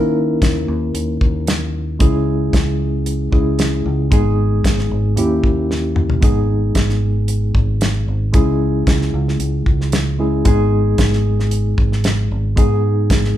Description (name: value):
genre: straight-eighth soul blues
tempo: 114 BPM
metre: 4/4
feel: straight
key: G# harmonic minor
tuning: A4 = 440 Hz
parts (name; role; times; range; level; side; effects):
- reed electric piano; accompaniment; 0.0-13.4 s; G#3 to A#4; -20 LUFS; left 1 dB; fast tremolo
- fingered electric bass; bass; 0.0-13.4 s; G#1 to D#3; -18 LUFS; right 1 dB; none
- damped 70s drum kit; drums; 0.4-13.3 s; hi-hat, kick drum, snare drum, toms; -16 LUFS; equal; none
room: moderate large studio reverb, RT60 0.9 s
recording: band playing live in one room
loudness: -14 LUFS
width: side -12 dB against mid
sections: 0.0-6.2 A section; 6.2-13.4 B section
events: drum fill 5.7-6.2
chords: 0.0 D#7(no3); 2.0 C#m; 4.1 G#m; 5.2 D#7b9; 6.2 G#m; 8.3 C#m; 10.5 G#m